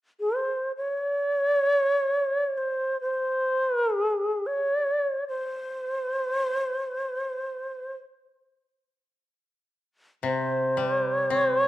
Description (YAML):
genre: japanese traditional, Japanese chamber music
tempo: free time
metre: none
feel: none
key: unclear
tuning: A4 = 441 Hz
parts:
  - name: breathy shakuhachi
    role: melody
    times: 0.2-11.7 s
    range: C5 to Db5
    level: -24 LUFS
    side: equal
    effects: none
  - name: koto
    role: accompaniment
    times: 10.2-11.7 s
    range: C3 to C4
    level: -29 LUFS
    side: left 4 dB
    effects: none
room: moderate recital hall reverb, RT60 1.2 s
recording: dark, warm production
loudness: -24 LUFS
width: side -15 dB against mid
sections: 0.0-11.7 A section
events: none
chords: none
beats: free time